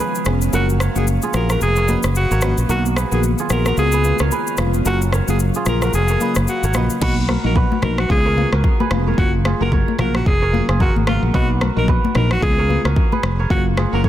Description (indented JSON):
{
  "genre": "afrobeats",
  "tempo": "111 BPM",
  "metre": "4/4",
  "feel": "swing 58% on 16ths",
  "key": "F# major",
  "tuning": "A4 = 440 Hz",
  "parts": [
    { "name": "glassy FM pad", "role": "sustained chords", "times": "0.0-7.0 s", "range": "C#3 to E#5", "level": "-28 LUFS", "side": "left 2 dB", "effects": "ensemble chorus, built-in reverb" },
    { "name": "kora", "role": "riff", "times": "0.0-14.1 s", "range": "E#4 to D#5", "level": "-26 LUFS", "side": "right 5 dB", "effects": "tape echo" },
    { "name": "afro-pop drum kit", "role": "drums", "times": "0.1-14.1 s", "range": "crash cymbal, kick drum, rim click, shaker, toms", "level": "-21 LUFS", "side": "equal", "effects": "soft clipping on snare" },
    { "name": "FM electric piano with soft pad layer", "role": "accompaniment", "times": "0.3-14.1 s", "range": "B2 to G#4", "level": "-24 LUFS", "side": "left 2 dB", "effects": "chorus, phaser" },
    { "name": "fingered electric bass", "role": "bass", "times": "0.3-14.1 s", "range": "E#1 to C#2", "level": "-19 LUFS", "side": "equal", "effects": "none" },
    { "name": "edgy alto saxophone", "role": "melody", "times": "0.5-14.0 s", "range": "E#4 to A#4", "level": "-23 LUFS", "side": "equal", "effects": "tape echo" },
    { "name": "congas", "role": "percussion", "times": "7.0-13.9 s", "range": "none", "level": "-26 LUFS", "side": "left 7 dB", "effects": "none" }
  ],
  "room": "light reverb",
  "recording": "dense, heavily limited modern master",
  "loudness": "-15 LUFS",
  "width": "side -12 dB against mid",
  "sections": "0.0-7.0 A section; 7.0-14.1 B section",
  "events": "kick muted 4.9-7.0; hi-hats muted 7.0-14.1",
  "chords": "0.0 C#7; 0.5 F#maj7; 2.7 Bmaj7; 3.8 C#7; 4.9 F#maj7; 7.0 Bmaj7; 8.1 C#7; 9.2 F#maj7; 11.3 Bmaj7; 12.4 C#7; 13.5 F#maj7"
}